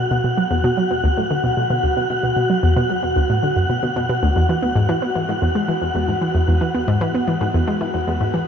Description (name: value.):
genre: ambient, sequencer-driven space music.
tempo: 113 BPM.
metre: 4/4.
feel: straight.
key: unclear.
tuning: A4 = 440 Hz.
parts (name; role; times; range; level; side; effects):
analog pluck; riff; 0.0-8.4 s; D2 to B3; -18 LUFS; equal; chorus, tape echo.
wind-like tuned noise texture; texture; 0.0-8.5 s; F#4 to F#5; -21 LUFS; equal; built-in reverb.
room: wet shimmer reverb, RT60 7.4 s.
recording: none.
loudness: -17 LUFS.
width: side -7 dB against mid.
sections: 0.0-8.5 A section.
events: filter sweep on synth arpeggio sound 0.0-8.5.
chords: 0.0 B5; 4.4 Eadd9.